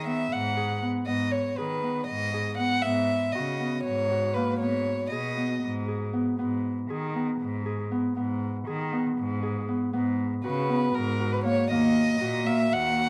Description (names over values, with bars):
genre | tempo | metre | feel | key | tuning
contemporary instrumental, chamber music in an uneven meter | 237 BPM (eighths) | 7/8 | straight | G# minor | A4 = 441 Hz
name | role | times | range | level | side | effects
warm violin | melody | 0.0-5.6, 10.4-13.1 s | A#4 to F#5 | -30 LUFS | equal | none
Celtic harp | arpeggios | 0.0-13.1 s | A#3 to G#4 | -31 LUFS | equal | none
warm cello | bass | 0.0-13.1 s | D#2 to D#3 | -33 LUFS | equal | none
room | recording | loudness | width
light reverb | none | -27 LUFS | mono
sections
0.0-13.1 A section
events
none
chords
0.0 G#m7; 2.9 F#7sus4/G#; 4.6 G#madd11; 6.4 G#m; 9.9 F#sus4/G#; 11.7 D#m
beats
0.07 0.32 0.57 0.83 | 1.08 1.33 1.59 1.84 2.09 2.35 2.60 | 2.85 3.10 3.36 3.61 3.86 4.12 4.37 | 4.62 4.87 5.13 5.38 5.63 5.89 6.14 | 6.39 6.65 6.90 7.15 7.41 7.66 7.91 | 8.16 8.42 8.67 8.92 9.18 9.43 9.68 | 9.94 10.19 10.44 10.70 10.95 11.20 11.46 | 11.71 11.96 12.22 12.47 12.72 12.98